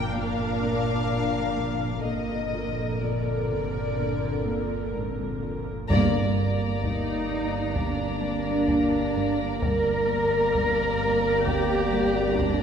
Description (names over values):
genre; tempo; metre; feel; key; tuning
cinematic, suspense film score; 64 BPM; 4/4; straight; G minor; A4 = 440 Hz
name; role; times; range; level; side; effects
warm chamber violin section; melody; 0.0-12.6 s; D5 to Bb5; -34 LUFS; left 6 dB; none
warm studio viola section; accompaniment; 0.0-12.6 s; D3 to Bb4; -32 LUFS; equal; none
dark symphonic cello section; bass; 0.0-12.6 s; Ab2 to Bb4; -28 LUFS; right 2 dB; none
warm chamber double bass section; bass; 0.0-12.6 s; G1 to Bb1; -32 LUFS; right 2 dB; none
metallic inharmonic drone; drone; 0.0-12.6 s; G1; -35 LUFS; left 1 dB; chorus, built-in reverb
warm chamber cello section; riff; 0.2-12.6 s; G2 to Bb3; -34 LUFS; right 1 dB; none
warm chamber violin section; second line; 5.9-12.6 s; D5; -32 LUFS; left 4 dB; none
mellow trombone section; sustained chords; 5.9-12.6 s; G3 to Bb3; -32 LUFS; right 3 dB; none
solo taiko drums; drums; 5.9-12.6 s; none; -32 LUFS; left 1 dB; none
timpani; percussion; 5.9-7.3 s; G2; -30 LUFS; equal; none
dark French horn section; sustained chords; 6.8-12.6 s; D4 to Bb4; -30 LUFS; left 3 dB; none
room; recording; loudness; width
wet scoring stage reverb, RT60 2.0 s; heard from further back in the room; -23 LUFS; side -7 dB against mid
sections
0.0-5.9 A section; 5.9-12.6 A section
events
band accent 5.9-6.8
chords
0.0 Bb; 5.9 Gm